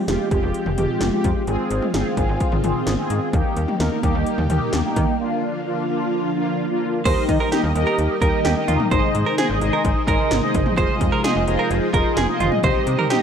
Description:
synth-pop; 129 BPM; 4/4; straight; Eb major; A4 = 440 Hz
string machine, violins; sustained chords; 0.0-13.2 s; C3 to G4; -27 LUFS; equal; ensemble chorus
mellow synth brass; accompaniment; 0.1-13.2 s; Ab3 to Eb5; -22 LUFS; equal; chorus, phaser
slap-like FM bass; bass; 0.1-13.0 s; F1 to Eb3; -24 LUFS; equal
80s electronic pad drums; drums; 0.1-13.2 s; crash cymbal, hi-hat, kick drum, snare drum, toms; -23 LUFS; equal; gated reverb on snare and toms, overdrive, gated reverb
direct-recorded clean electric guitar; second line; 7.1-13.2 s; F4 to C5; -24 LUFS; right 5 dB; lush chorus, analog delay
light reverb, digital ambience; -18 LUFS; side -7 dB against mid
0.0-7.1 A section; 7.1-13.2 B section
break 5.2-7.1
0.0 Fmadd9; 1.5 Ab6; 3.3 Eb; 5.2 Bb; 7.1 Eb; 8.9 Ab; 10.8 Fm7; 12.6 Cm

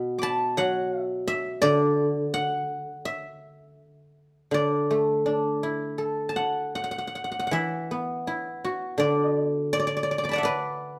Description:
chinese traditional, Chinese solo plucked strings; 82 BPM; 4/4; uneven beats, rubato; D gong mode; A4 = 439 Hz
guzheng; solo; 0.0-11.0 s; B2 to D6; -26 LUFS; equal
light reverb; band playing live in one room; -26 LUFS; mono
0.0-7.5 A section; 7.5-11.0 B section

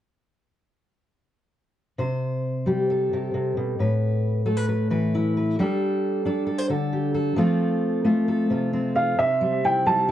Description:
folk; 134 BPM; 4/4; straight; C major; A4 = 438 Hz
fingerpicked steel-string acoustic guitar; accompaniment; 2.0-10.1 s; A2 to C5; -22 LUFS; equal
dark upright piano; melody; 9.0-10.1 s; E5 to A5; -20 LUFS; right 2 dB
moderate studio reverb, RT60 0.5 s; worn, warbling old tape, cassette tape, warbly pitch drift; -21 LUFS; side -11 dB against mid
2.0-9.2 A section
2.0 C5; 3.8 Asus2; 5.6 Gsus2; 7.4 F; 9.2 C

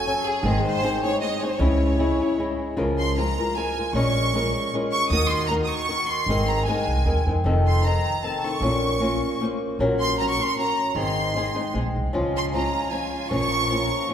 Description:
mexican folk, mariachi; 154 BPM; 3/4; swing 53% on 8ths; Db major; A4 = 438 Hz
clear studio violin section; melody; 0.0-14.1 s; G#4 to Eb6; -26 LUFS; right 1 dB
flamenco guitar; accompaniment; 0.0-14.1 s; F2 to C5; -24 LUFS; left 2 dB
dark studio violin section; sustained chords; 0.0-2.8, 12.1-14.1 s; D#4 to Bb5; -33 LUFS; equal
upright bass; bass; 0.4-13.8 s; F1 to F2; -26 LUFS; right 1 dB
wet concert hall reverb, RT60 1.9 s; recorded in a church or concert hall; -21 LUFS; side -9 dB against mid
0.0-2.8 A section; 2.8-14.1 B section
0.4 G#; 1.6 C#m; 2.8 Db6; 3.9 Bbm7; 5.1 Ebm; 6.3 Abadd9; 7.4 F7; 8.6 Bbmadd9; 9.8 Gb/Bb; 11.0 Ab; 12.1 Db; 13.3 Bbm

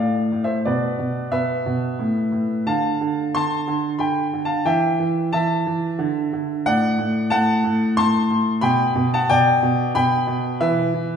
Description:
classical-period piano sonatina; 91 BPM; 3/4; rubato; G major from 6.7 s; A4 = 445 Hz
clear baby grand piano; solo; 0.0-11.2 s; A2 to C6; -18 LUFS; equal
wet recital hall reverb, RT60 1.3 s; heard from further back in the room; -18 LUFS; side -7 dB against mid
0.0-11.2 A section
0.0 Am; 0.6 N.C.; 2.0 A5; 2.7 Dm; 4.7 N.C.; 6.0 D5; 6.7 D7/A; 8.6 G/B; 10.6 E5

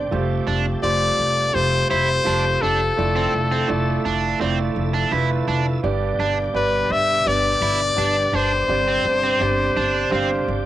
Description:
pop; 84 BPM; 4/4; straight; C major; A4 = 438 Hz
warm concert grand piano; accompaniment; 0.0-10.7 s; G2 to F5; -25 LUFS; right 5 dB; cassette tape, plate reverb
bright tonewheel organ; sustained chords; 0.0-10.7 s; B2 to E5; -32 LUFS; left 1 dB; overdrive, chorus vibrato, slow rotary speaker, cassette tape
upright bass; bass; 0.0-10.7 s; F1 to G1; -24 LUFS; left 1 dB
overdriven electric guitar; riff; 0.5-10.3 s; C4 to E4; -25 LUFS; right 6 dB; cassette tape
brilliant trumpet; melody; 0.8-10.5 s; A4 to E5; -20 LUFS; left 3 dB; cassette tape, plate reverb
moderate studio reverb, RT60 0.6 s; home recording on cassette; -18 LUFS; side -13 dB against mid
0.0-10.7 A section
0.1 Fadd9; 3.0 Dmadd9/F; 5.8 G; 8.7 Csus2/G

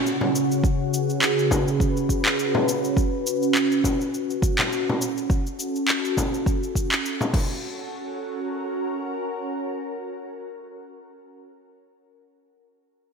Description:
organic downtempo; 103 BPM; 4/4; swing 55% on 16ths; F# minor; A4 = 440 Hz
ethereal airy pad; sustained chords; 0.0-10.7 s; C#3 to B4; -24 LUFS; right 1 dB; ensemble chorus, built-in reverb, phaser, sidechain pumping
afro-pop drum kit; drums; 0.1-7.5 s; cabasa, crash cymbal, handclaps; -26 LUFS; equal; gated reverb
frame drum; percussion; 0.2-7.5 s; -29 LUFS; left 2 dB
electronic kick drum; drums; 0.6-7.5 s; -24 LUFS; equal
wet lush hall reverb, RT60 2.0 s; bright 1980s-style digital production; -21 LUFS; side -5 dB against mid
0.0-7.6 A section; 7.6-10.0 B section
filter sweep on ambient pad 0.0-7.6
0.0 C#7sus4; 3.0 F#m; 7.3 F#5; 7.6 F#

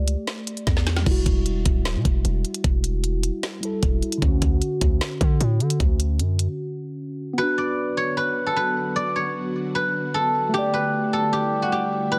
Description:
hip hop, trap; 152 BPM; 4/4; half-time; B minor; A4 = 440 Hz
mellow tine electric piano; accompaniment; 0.0-12.2 s; D3 to D5; -30 LUFS; equal; phaser, low-pass filter
hard-hitting 808-style bass; bass; 0.0-6.5 s; D1 to D3; -25 LUFS; equal
trap drum kit; drums; 0.1-6.5 s; crash cymbal, hi-hat, kick drum, snare drum; -25 LUFS; equal
guzheng; melody; 7.4-12.2 s; F#4 to D5; -25 LUFS; equal; low-pass filter
ethereal airy pad; sustained chords; 7.8-12.2 s; D3 to F#4; -33 LUFS; equal; ensemble chorus, built-in reverb
light reverb, digital ambience; dense, heavily limited modern master; -23 LUFS; mono
0.0-7.4 A section; 7.4-12.2 B section
drum fill 0.7-1.1; break 6.6-7.4
0.0 A7sus4; 1.1 Emadd9; 4.2 Dmaj7; 7.4 Bm; 10.5 A7sus4

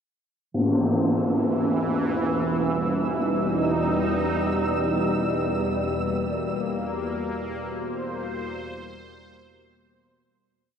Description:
dark ambient drone; free time; E harmonic minor; A4 = 439 Hz
sweeping resonant pad; sustained chords; 0.5-10.5 s; E3 to C5; -26 LUFS; right 1 dB; chorus
overtone-sweeping drone; drone; 1.8-10.6 s; E2 to B2; -31 LUFS; left 1 dB; chorus, built-in reverb
tam-tam; percussion; 0.5-0.8 s; -26 LUFS; left 1 dB; low-pass filter on cymbals
flickering grainy texture; texture; 1.6-10.5 s; E6; -35 LUFS; right 1 dB; built-in reverb
wet huge ambient reverb, RT60 8.3 s; in a vast, echoing space; -22 LUFS; side -8 dB against mid
0.5-10.5 A section
fade-in on synth drone 0.5-10.5; fade-out on synth texture 0.5-10.5; fade-out 5.5-10.5
0.5 Em; 5.5 Gm

